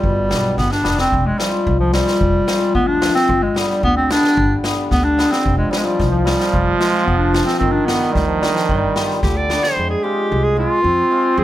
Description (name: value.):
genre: klezmer.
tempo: 111 BPM.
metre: 2/4.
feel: straight.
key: unclear.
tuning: A4 = 439 Hz.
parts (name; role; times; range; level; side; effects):
breathy clarinet; melody; 0.0-11.4 s; F3 to D5; -18 LUFS; equal; plate reverb.
clear trombone; second line; 0.0-0.8, 5.4-11.4 s; B2 to C4; -21 LUFS; right 5 dB; none.
cimbalom; accompaniment; 0.0-11.4 s; D3 to F4; -22 LUFS; left 5 dB; none.
upright bass; bass; 0.0-11.4 s; F1 to F2; -21 LUFS; equal; none.
street-band drum kit; drums; 0.0-9.8 s; kick drum, snare drum; -23 LUFS; equal; none.
room: light reverb.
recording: close, detailed microphones.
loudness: -14 LUFS.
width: side -13 dB against mid.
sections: 0.0-1.1 A section; 1.1-9.8 B section; 9.8-11.4 B section.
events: drum fill 0.6-1.1, 4.9-5.5, 9.2-9.8.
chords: 0.0 G; 1.1 Fm; 3.3 G; 5.5 Fm; 7.6 G; 9.8 Fm.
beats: | 0.04 0.58 | 1.12 1.67 | 2.21 2.75 | 3.29 3.83 | 4.37 4.91 | 5.45 5.99 | 6.53 7.07 | 7.61 8.15 | 8.69 9.23 | 9.77 10.30 | 10.84 11.38.